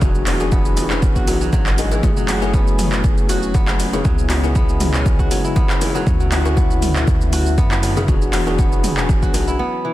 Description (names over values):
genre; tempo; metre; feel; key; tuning
afro house; 119 BPM; 4/4; swing 53% on 16ths; unclear; A4 = 439 Hz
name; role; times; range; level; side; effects
warm analog pad; sustained chords; 0.0-9.6 s; C#3 to G#4; -26 LUFS; right 2 dB; chorus, sidechain pumping
kora; arpeggios; 0.0-9.9 s; C#3 to F#4; -25 LUFS; equal; sidechain pumping, tape echo
bell-like tine electric piano; stabs; 0.0-9.6 s; A3 to G#4; -25 LUFS; left 4 dB; medium stereo tremolo, sidechain pumping, tape echo
warm 808-style bass; bass; 0.0-9.6 s; E1 to F#2; -22 LUFS; equal; sidechain pumping
deep house drum kit; drums; 0.0-9.6 s; handclaps, hi-hat, shaker, toms; -24 LUFS; right 1 dB; overdrive
electronic kick drum; drums; 0.0-9.3 s; none; -18 LUFS; equal; overdrive
bongos; percussion; 0.0-9.5 s; none; -30 LUFS; left 4 dB; none
room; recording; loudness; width
little or no reverb; dense, heavily limited modern master; -14 LUFS; side -15 dB against mid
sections
0.0-9.9 A section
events
break 9.6-9.9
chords
0.0 E7; 2.0 F#m7; 4.0 C#m7; 6.1 Dmaj7; 8.1 E7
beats
| 0.02 0.52 1.02 1.53 | 2.03 2.54 3.04 3.54 | 4.05 4.55 5.06 5.56 | 6.07 6.57 7.08 7.58 | 8.08 8.59 9.09 9.60